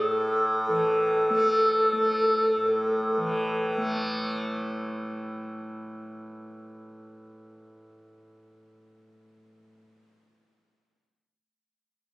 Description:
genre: indian classical, Hindustani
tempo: free time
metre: none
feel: none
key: unclear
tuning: A4 = 440 Hz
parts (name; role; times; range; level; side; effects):
- hollow bansuri; melody; 0.0-3.8 s; A4; -22 LUFS; equal; none
- tanpura; drone; 0.0-10.3 s; A2 to A3; -31 LUFS; equal; none
room: moderate small room reverb, RT60 0.5 s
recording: recorded on a phone in the room, studio reverb, compression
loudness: -23 LUFS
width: side -23 dB against mid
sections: 0.7-4.1 A section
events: none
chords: none

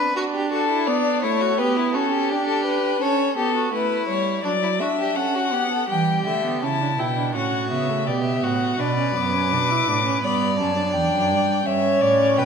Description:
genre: classical, baroque-style fugue for string quartet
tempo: 83 BPM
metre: 4/4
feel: straight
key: G major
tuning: A4 = 440 Hz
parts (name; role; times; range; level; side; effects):
- rich violin; second line; 0.0-12.5 s; D4 to D5; -24 LUFS; left 1 dB; none
- warm viola; accompaniment; 0.0-12.5 s; F#3 to E4; -25 LUFS; right 6 dB; none
- warm violin; melody; 0.5-12.5 s; G4 to D6; -23 LUFS; left 7 dB; none
- rich cello; bass; 5.9-12.5 s; E2 to E3; -25 LUFS; right 6 dB; none
room: wet recital hall reverb, RT60 1.7 s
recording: none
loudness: -19 LUFS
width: side -6 dB against mid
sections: 0.0-5.9 A section; 5.9-12.5 B section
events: none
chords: 0.2 D; 1.6 G/B; 3.0 A7; 4.4 D/F#; 5.9 C#dim; 7.3 F#m7/A; 8.8 Bm; 10.2 Em7; 11.7 G5

